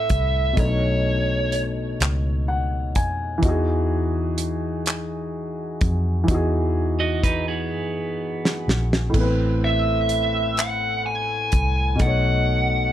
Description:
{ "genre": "slow six-eight R&B", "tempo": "42 BPM (dotted quarters)", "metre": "6/8", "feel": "straight", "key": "E major", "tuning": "A4 = 440 Hz", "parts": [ { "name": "bluesy overdriven lead guitar", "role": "melody", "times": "0.0-1.6, 9.6-12.9 s", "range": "C#5 to G#5", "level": "-23 LUFS", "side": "right 1 dB", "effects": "distortion" }, { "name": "dark baby grand piano", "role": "accompaniment", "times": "0.0-12.9 s", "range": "A2 to G#5", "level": "-25 LUFS", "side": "left 1 dB", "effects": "none" }, { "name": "vintage muted fingered electric bass", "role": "bass", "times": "0.0-12.9 s", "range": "A1 to F#2", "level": "-24 LUFS", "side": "equal", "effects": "none" }, { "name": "damped 70s drum kit", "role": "drums", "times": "0.1-12.2 s", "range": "crash cymbal, handclaps, hi-hat, kick drum, snare drum", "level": "-22 LUFS", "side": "equal", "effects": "none" }, { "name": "electric guitar at the edge of break-up", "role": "second line", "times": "7.0-8.9 s", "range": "B3 to D#5", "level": "-27 LUFS", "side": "right 5 dB", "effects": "plate reverb" } ], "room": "light reverb", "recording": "none", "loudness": "-20 LUFS", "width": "side -12 dB against mid", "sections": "0.0-12.9 A section", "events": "grand piano fill 2.0-3.4; drum fill 7.7-9.1", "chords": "0.0 Amadd9; 0.6 B9; 3.4 Emaj9; 9.1 Amadd9; 12.0 B9" }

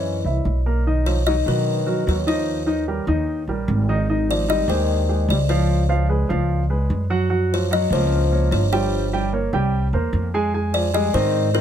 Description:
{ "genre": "jazz", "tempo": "149 BPM", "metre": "4/4", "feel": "straight", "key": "unclear", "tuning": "A4 = 440 Hz", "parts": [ { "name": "buzzing kalimba", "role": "melody", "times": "0.0-11.6 s", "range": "Bb4 to D#5", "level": "-25 LUFS", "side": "left 2 dB", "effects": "none" }, { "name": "breathy trombone", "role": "second line", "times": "0.0-11.6 s", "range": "Eb3 to G3", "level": "-28 LUFS", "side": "left 4 dB", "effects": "none" }, { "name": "warm upright piano", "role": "accompaniment", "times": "0.0-11.6 s", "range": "D#3 to Ab5", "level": "-24 LUFS", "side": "right 1 dB", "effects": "none" }, { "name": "upright bass", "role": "bass", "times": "0.0-11.6 s", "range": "G1 to B2", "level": "-21 LUFS", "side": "equal", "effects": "none" } ], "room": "little or no reverb", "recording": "close, detailed microphones", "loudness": "-18 LUFS", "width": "side -9 dB against mid", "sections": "0.9-11.6 A section", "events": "none", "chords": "0.0 Gb7; 0.9 Bmaj7; 2.5 Eb9; 4.1 Abmaj7; 5.7 Db7; 7.3 Gbmaj7; 8.9 Gm7b5; 9.7 C7; 10.5 Fm7" }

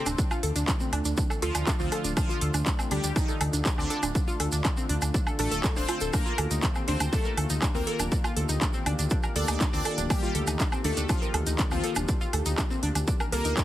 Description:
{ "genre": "melodic techno", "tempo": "121 BPM", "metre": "4/4", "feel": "straight", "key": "unclear", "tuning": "A4 = 441 Hz", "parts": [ { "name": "warm analog pad", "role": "sustained chords", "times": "0.0-13.6 s", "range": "D3 to G4", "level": "-36 LUFS", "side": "left 1 dB", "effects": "chorus, sidechain pumping" }, { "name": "analog pluck", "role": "arpeggios", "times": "0.1-13.6 s", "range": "A3 to Bb4", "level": "-34 LUFS", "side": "equal", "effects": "chorus, sidechain pumping, digital delay" }, { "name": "dark detuned saw bass", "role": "bass", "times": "0.1-13.5 s", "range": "D1 to D2", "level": "-29 LUFS", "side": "equal", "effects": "sidechain pumping" }, { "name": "techno drum kit", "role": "drums", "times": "0.1-13.6 s", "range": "handclaps, hi-hat, woodblock", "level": "-32 LUFS", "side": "right 1 dB", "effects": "overdrive, studio reverb" }, { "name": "tube shaker", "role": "percussion", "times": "0.1-13.6 s", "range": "none", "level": "-38 LUFS", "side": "right 4 dB", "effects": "none" }, { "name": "electronic kick drum", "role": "drums", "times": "0.2-13.6 s", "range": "none", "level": "-27 LUFS", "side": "equal", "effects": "overdrive, studio reverb" }, { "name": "resonant sweep polysynth", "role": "melody", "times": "1.4-13.5 s", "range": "D3 to D5", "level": "-34 LUFS", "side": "left 1 dB", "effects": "chorus, phaser, sidechain pumping, tape echo" } ], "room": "little or no reverb", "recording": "heavily compressed radio sound, multiband compression", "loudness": "-24 LUFS", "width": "side -14 dB against mid", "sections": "0.0-13.6 A section", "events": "none", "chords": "0.0 Dm; 6.1 Eb/D" }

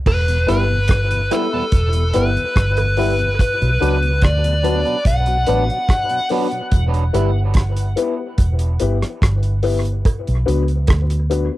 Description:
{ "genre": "dub reggae", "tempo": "72 BPM", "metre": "4/4", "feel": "straight", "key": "unclear", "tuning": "A4 = 441 Hz", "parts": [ { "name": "high-gain lead guitar", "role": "melody", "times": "0.1-6.3 s", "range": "A4 to F#5", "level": "-21 LUFS", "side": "left 1 dB", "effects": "distortion, cassette tape, dub echo, plate reverb" }, { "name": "vintage muted fingered electric bass", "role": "bass", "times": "0.1-11.5 s", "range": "E1 to D2", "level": "-18 LUFS", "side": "equal", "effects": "none" }, { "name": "damped 70s drum kit", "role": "drums", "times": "0.1-11.5 s", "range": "crash cymbal, hi-hat, kick drum, rim click", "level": "-19 LUFS", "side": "equal", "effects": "cassette tape" }, { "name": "cowbell", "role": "percussion", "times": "0.1-3.0, 10.1-11.1 s", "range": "none", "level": "-31 LUFS", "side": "right 8 dB", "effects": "dub echo" }, { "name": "mellow tonewheel organ", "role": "accompaniment", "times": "0.3-6.6 s", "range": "E2 to G4", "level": "-30 LUFS", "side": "left 5 dB", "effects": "chorus vibrato, slow rotary speaker, cassette tape, plate reverb" }, { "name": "clean electric guitar", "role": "accompaniment", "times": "0.5-7.3 s", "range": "F#3 to E4", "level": "-27 LUFS", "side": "right 7 dB", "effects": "cassette tape, dub echo, plate reverb" }, { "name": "dark upright piano", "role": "stabs", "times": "0.5-11.6 s", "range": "B3 to B4", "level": "-24 LUFS", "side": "left 6 dB", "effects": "cassette tape, dub echo, plate reverb" } ], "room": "light reverb", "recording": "home recording on cassette", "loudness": "-15 LUFS", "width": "side -16 dB against mid", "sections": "0.1-11.6 A section", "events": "part muted 3.4-10.1", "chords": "0.1 Em; 3.4 Bm; 6.7 Em; 10.1 Bm" }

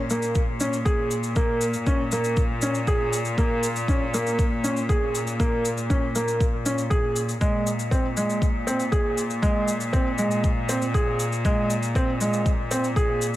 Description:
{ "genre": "piano and strings electronica", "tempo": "119 BPM", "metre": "4/4", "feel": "straight", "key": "Bb minor", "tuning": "A4 = 439 Hz", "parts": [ { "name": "rich chamber cello section", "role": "bass", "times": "0.0-13.4 s", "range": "Bb2", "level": "-28 LUFS", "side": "equal", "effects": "sidechain pumping" }, { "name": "felt-muted upright piano", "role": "riff", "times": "0.1-13.2 s", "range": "Ab3 to Ab4", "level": "-25 LUFS", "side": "equal", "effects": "ping-pong delay" }, { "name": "shaker", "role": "drums", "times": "0.1-13.4 s", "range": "none", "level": "-34 LUFS", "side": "left 2 dB", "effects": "none" }, { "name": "electronic kick drum", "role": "drums", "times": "0.4-13.1 s", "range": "none", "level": "-24 LUFS", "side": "equal", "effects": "none" } ], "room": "little or no reverb", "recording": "none", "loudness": "-21 LUFS", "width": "side -15 dB against mid", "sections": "0.0-13.4 A section", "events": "none", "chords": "0.0 Bbm7; 7.4 Abadd9/Bb" }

